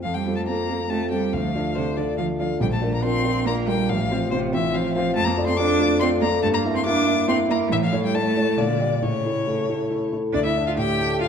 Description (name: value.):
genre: quick classical-period movement for piano trio.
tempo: 140 BPM.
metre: 3/4.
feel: straight.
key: F major, D minor from 5.2 s.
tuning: A4 = 440 Hz.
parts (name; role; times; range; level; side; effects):
rich violin; melody; 0.0-11.3 s; C5 to D6; -27 LUFS; left 6 dB; none.
rich cello; second line; 0.0-11.3 s; C3 to G4; -26 LUFS; right 6 dB; none.
dark concert grand piano; accompaniment; 0.0-11.3 s; A1 to E5; -22 LUFS; left 1 dB; none.
room: wet scoring stage reverb, RT60 1.7 s.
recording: dark, warm production.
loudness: -20 LUFS.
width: side -7 dB against mid.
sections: 0.0-10.3 A section.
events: none.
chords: 0.0 F; 1.3 Dm; 2.6 Bb; 3.9 F/A; 5.2 Dm/F; 6.4 Em7b5/G; 7.7 A; 8.6 Gm/Bb; 9.0 A; 10.3 Dm.